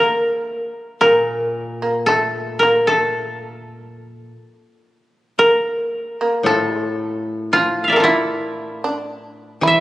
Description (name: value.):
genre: japanese traditional, Japanese chamber music.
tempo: 56 BPM.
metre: 4/4.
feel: rubato.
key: A miyako bushi.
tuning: A4 = 440 Hz.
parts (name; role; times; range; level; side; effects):
koto; melody; 0.0-9.8 s; E4 to F5; -16 LUFS; equal; none.
shamisen; second line; 0.0-9.8 s; E3 to E4; -23 LUFS; right 2 dB; none.
koto; accompaniment; 1.0-9.8 s; A2 to E3; -26 LUFS; left 2 dB; none.
room: moderate scoring stage reverb, RT60 2.0 s.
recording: recorded on a phone in the room, club reverb.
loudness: -16 LUFS.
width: side -16 dB against mid.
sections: 0.0-5.4 A section; 5.4-9.8 B section.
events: none.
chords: none.